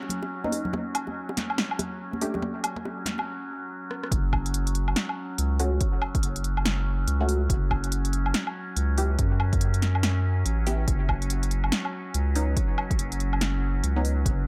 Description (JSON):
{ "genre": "deep dubstep", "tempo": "142 BPM", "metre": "4/4", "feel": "swing 61% on 16ths, half-time", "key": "F# minor", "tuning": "A4 = 439 Hz", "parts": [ { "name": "overtone-sweeping drone", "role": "sustained chords", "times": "0.0-14.5 s", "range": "F#3 to C#4", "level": "-37 LUFS", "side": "equal", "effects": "chorus, built-in reverb" }, { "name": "bongos and congas", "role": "percussion", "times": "0.0-3.3 s", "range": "none", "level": "-36 LUFS", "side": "equal", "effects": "dub echo" }, { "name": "deep house drum kit", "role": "drums", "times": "0.1-14.4 s", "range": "hi-hat, rim click, snare drum, woodblock", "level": "-32 LUFS", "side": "equal", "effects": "none" }, { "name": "filtered dub chord stab", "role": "stabs", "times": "0.4-2.4, 5.6-14.2 s", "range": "A3 to G4", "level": "-36 LUFS", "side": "equal", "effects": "phaser, subtle chorus, dub echo" }, { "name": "electronic kick drum", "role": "drums", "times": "0.7-14.4 s", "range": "none", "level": "-29 LUFS", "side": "equal", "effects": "high-pass filter on kick, high-pass filter on room" }, { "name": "saturated sub bass", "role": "bass", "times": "4.1-14.5 s", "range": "F#1 to F#2", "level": "-28 LUFS", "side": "equal", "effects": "none" } ], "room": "light reverb, digital ambience", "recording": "none", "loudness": "-27 LUFS", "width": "mono", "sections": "0.0-4.1 A section; 4.1-14.5 B section", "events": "build-up 0.0-4.1; filter sweep on synth stab 0.0-4.1; break 3.3-4.1; drum fill 3.9; drop 4.1-14.5", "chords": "0.0 Badd9/F#; 0.7 N.C.; 4.1 F#5; 7.5 N.C.; 10.9 Bsus2/F# (rootless)" }